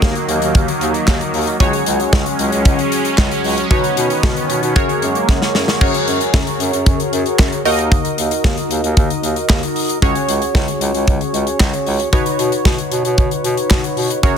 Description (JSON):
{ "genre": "synth-pop", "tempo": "114 BPM", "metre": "4/4", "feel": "straight", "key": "F# major", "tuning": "A4 = 439 Hz", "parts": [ { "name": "funky polysynth comp", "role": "accompaniment", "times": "0.0-14.4 s", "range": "C#4 to D#5", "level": "-19 LUFS", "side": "equal", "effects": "chorus" }, { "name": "sweeping resonant pad", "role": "sustained chords", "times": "0.0-5.8, 14.2-14.4 s", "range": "D#3 to C#4", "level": "-22 LUFS", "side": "right 3 dB", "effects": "chorus" }, { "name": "warm bass clarinet", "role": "bass", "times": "0.0-14.4 s", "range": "C#2 to B2", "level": "-22 LUFS", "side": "equal", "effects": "none" }, { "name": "modern studio drum kit", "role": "drums", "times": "0.0-14.4 s", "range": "crash cymbal, handclaps, hi-hat, kick drum, snare drum", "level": "-16 LUFS", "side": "left 1 dB", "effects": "soft clipping on kick" } ], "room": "light reverb, studio reverb", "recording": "dense, heavily limited modern master", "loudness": "-13 LUFS", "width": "side -7 dB against mid", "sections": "0.0-5.8 A section; 5.8-14.4 A section", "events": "drum fill 5.3-5.8", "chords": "0.0 D#m; 1.6 C#sus4; 3.7 Badd9; 4.8 F#add9; 7.7 D#m; 10.0 C#sus4; 12.1 Badd9", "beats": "0.02 0.55 1.08 | 1.60 2.13 2.65 3.18 | 3.71 4.23 4.76 5.29 | 5.81 6.34 6.87 7.39 | 7.92 8.45 8.97 9.50 | 10.02 10.55 11.08 11.60 | 12.13 12.65 13.18 13.71 | 14.23" }